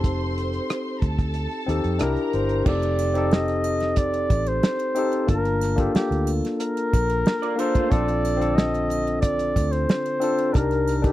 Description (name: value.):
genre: lush 1970s-style soul.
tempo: 91 BPM.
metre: 4/4.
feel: straight.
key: unclear.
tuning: A4 = 440 Hz.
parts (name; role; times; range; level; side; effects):
breathy flugelhorn; melody; 0.0-11.1 s; G4 to Eb5; -25 LUFS; equal; none.
rich studio string section; second line; 0.0-2.7 s; A4 to C6; -33 LUFS; right 1 dB; slapback echo.
barky tine electric piano; accompaniment; 0.0-11.1 s; D3 to A5; -25 LUFS; left 2 dB; overdrive.
vintage muted fingered electric bass; bass; 0.0-11.1 s; F1 to F2; -26 LUFS; equal; none.
warm soul drum kit; drums; 0.0-11.1 s; crash cymbal, hi-hat, kick drum, rim click, snare drum; -21 LUFS; right 1 dB; none.
triangle; percussion; 2.7-11.1 s; none; -43 LUFS; right 21 dB; none.
electric guitar through a small old amp; riff; 7.4-8.1 s; A3 to D5; -31 LUFS; right 8 dB; ensemble chorus.
room: little or no reverb.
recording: dry, close 1970s-style studio recording.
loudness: -20 LUFS.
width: side -15 dB against mid.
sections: 0.0-2.7 A section; 2.7-11.1 B section.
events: none.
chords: 0.0 F9; 2.0 C9; 2.7 F9; 5.3 Gm7; 7.9 Bbmaj7; 10.5 Cm9.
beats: | 0.04 0.69 1.35 2.01 | 2.66 3.32 3.98 4.63 | 5.29 5.95 6.60 7.26 | 7.92 8.57 9.23 9.89 | 10.55.